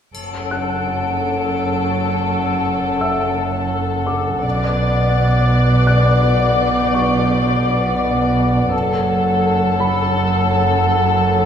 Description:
cinematic, suspense film score; 84 BPM; 3/4; straight; F# minor; A4 = 440 Hz
muted studio cello section; bass; 0.1-11.5 s; F#2 to B2; -20 LUFS; right 2 dB
triangle; percussion; 0.1-1.5 s; -41 LUFS; left 3 dB
muted studio violin section; melody; 0.2-11.5 s; A4 to D5; -21 LUFS; left 3 dB
glass harmonica; sustained chords; 0.2-11.5 s; C#4 to F#5; -21 LUFS; left 1 dB
muted studio double bass section; bass; 0.2-11.5 s; F#1 to B1; -22 LUFS; right 3 dB
muted studio violin section; texture; 0.2-8.3 s; C#5 to D7; -29 LUFS; left 4 dB
dark baby grand piano; texture; 0.5-11.5 s; E5 to F#6; -28 LUFS; left 2 dB
wet recital hall reverb, RT60 1.4 s; recorded in a church or concert hall; -15 LUFS; side -8 dB against mid
0.2-11.5 A section
0.2 F#m; 4.4 Bm; 8.7 F#m
| 0.15 0.87 1.58 | 2.30 3.01 3.73 | 4.44 5.15 5.87 | 6.58 7.30 8.01 | 8.72 9.44 10.15 | 10.87

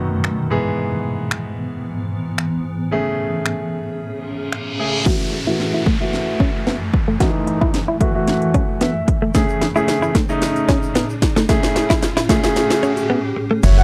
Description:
dance-pop; 112 BPM; 4/4; straight; A4 = 440 Hz
clear concert grand piano; accompaniment; 0.0-13.8 s; F#2 to E5; -24 LUFS; equal; sidechain pumping, low-pass filter
granular cloud pad; sustained chords; 0.0-13.8 s; F#2 to G#4; -28 LUFS; equal; built-in reverb, sidechain pumping, low-pass filter
house drum kit; drums; 0.2-13.8 s; crash cymbal, finger snaps, hi-hat, kick drum, snare drum; -21 LUFS; equal; overdrive
reverse cymbal, riser and downlifter; sound effects; 4.4-13.8 s; -31 LUFS; equal
direct-recorded clean electric guitar; riff; 5.1-13.8 s; A3 to F#4; -22 LUFS; equal; lush chorus, low-pass filter
tube shaker; percussion; 9.3-13.8 s; -43 LUFS; equal
round analog bass; bass; 13.6-13.8 s; F#1; -13 LUFS; equal; sidechain pumping
airy dreamy lead; melody; 13.8 s; F#5; -20 LUFS; equal; chorus
light reverb; dry, close 1970s-style studio recording; -19 LUFS; mono
0.0-5.1 A section; 5.1-13.6 B section
reverse cymbal 4.4-5.1; build-up 5.1-13.6; drum fill 5.1-13.1; riser 5.1-13.6; filter sweep 5.1-13.6; grand piano fill 8.5-9.3; break 13.1-13.6
0.0 B7/F#; 0.5 E/G#; 2.9 Amaj7; 5.1 F#m7; 9.3 Amaj7
0.24 | 0.78 1.31 1.85 2.38 | 2.92 3.46 3.99 4.53 | 5.06 5.60 6.13 6.67 | 7.21 7.74 8.28 8.81 | 9.35 9.88 10.42 10.96 | 11.49 12.03 12.56 13.10 | 13.63

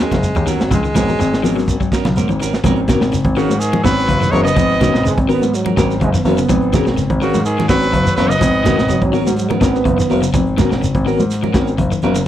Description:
afrobeat; 125 BPM; 4/4; straight; G# dorian; A4 = 444 Hz
clear baritone saxophone; melody; 0.0-1.7 s; F#3 to G#3; -21 LUFS; equal
mellow reed electric piano; accompaniment; 0.0-12.2 s; B3 to C#5; -20 LUFS; left 6 dB; fast tremolo
electric guitar at the edge of break-up; arpeggios; 0.0-12.3 s; B2 to F#3; -22 LUFS; left 7 dB; spring reverb
clean electric guitar; stabs; 0.0-12.2 s; B3 to A#4; -24 LUFS; right 7 dB; wide subtle chorus
warm concert grand piano; bass; 0.0-12.1 s; F#1 to G#2; -18 LUFS; equal
crunchy breakbeat drum kit; drums; 0.0-12.3 s; hi-hat, kick drum, snare drum; -20 LUFS; right 1 dB
congas; percussion; 0.1-12.2 s; -23 LUFS; right 3 dB
shekere; percussion; 0.1-12.3 s; -25 LUFS; right 2 dB
bright trumpet; melody; 3.4-9.0 s; F#4 to D#5; -18 LUFS; equal
raspy alto saxophone; second line; 3.4-9.0 s; C#3 to B3; -22 LUFS; right 5 dB
mellow trombone section; second line; 5.1-10.5 s; F#3 to B3; -20 LUFS; right 5 dB
small room ambience; dry, close 1970s-style studio recording; -13 LUFS; side -11 dB against mid
0.0-2.6 A section; 2.6-12.3 B section
baritone saxophone solo 0.0-2.6
0.0 G#m11
0.23 | 0.71 1.20 1.68 2.16 | 2.64 3.12 3.61 4.09 | 4.57 5.05 5.53 6.01 | 6.49 6.97 7.45 7.93 | 8.42 8.90 9.38 9.86 | 10.34 10.82 11.30 11.78 | 12.27

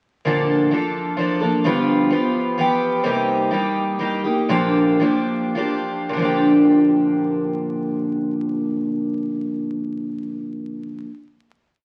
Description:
acoustic folk duo or small band; 100-129 BPM; 3/4; straight; Bb major; A4 = 441 Hz
picked twelve-string acoustic guitar; solo; 0.2-11.1 s; G2 to A4; -20 LUFS; equal
wet studio reverb, RT60 0.8 s; very old 78 rpm record, vinyl crackle, lossy compression artefacts; -20 LUFS; mono
0.3-6.1 A section; 6.1-9.7 final chord
slowing down 3.1-6.1
0.3 Bbmaj7; 1.6 G7; 3.1 Cm7; 4.5 Bb6
| 0.25 0.72 1.18 | 1.65 2.12 2.58 | 3.05 3.52 4.00 | 4.50 5.01 5.56 | 6.13 6.73 7.33 | 7.93 8.53 9.12

